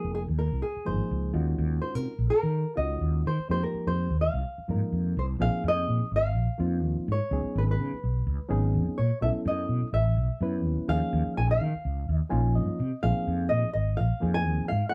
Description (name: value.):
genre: electric jazz fusion.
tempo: 126 BPM.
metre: 4/4.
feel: swing 55% on 16ths.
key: F phrygian, Bb phrygian from 5.4 s.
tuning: A4 = 439 Hz.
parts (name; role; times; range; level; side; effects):
flamenco guitar; melody; 0.0-14.9 s; Ab4 to Ab5; -33 LUFS; equal; none.
reed electric piano; accompaniment; 0.0-14.9 s; F3 to Ab5; -35 LUFS; equal; none.
mellow fretless electric bass; bass; 0.0-14.8 s; F1 to Eb3; -29 LUFS; equal; none.
room: moderate studio ambience, RT60 0.5 s.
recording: band playing live in one room.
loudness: -27 LUFS.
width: mono.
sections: 0.0-5.4 A section; 5.4-14.9 B section.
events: reed electric piano fill 12.1-13.0.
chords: 0.0 Fm11; 1.3 Ebm11; 3.5 Fm11; 5.4 Bb9sus4; 7.3 Db9sus4; 9.2 B9sus4; 10.9 Eb9sus4; 13.0 Bb9sus4.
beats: 0.14 0.62 1.10 | 1.58 2.06 2.54 3.02 | 3.50 3.97 4.45 4.93 | 5.41 5.88 6.36 6.84 | 7.32 7.79 8.27 8.75 | 9.22 9.70 10.18 10.65 | 11.13 11.60 12.08 12.56 | 13.03 13.51 13.98 14.46 | 14.94.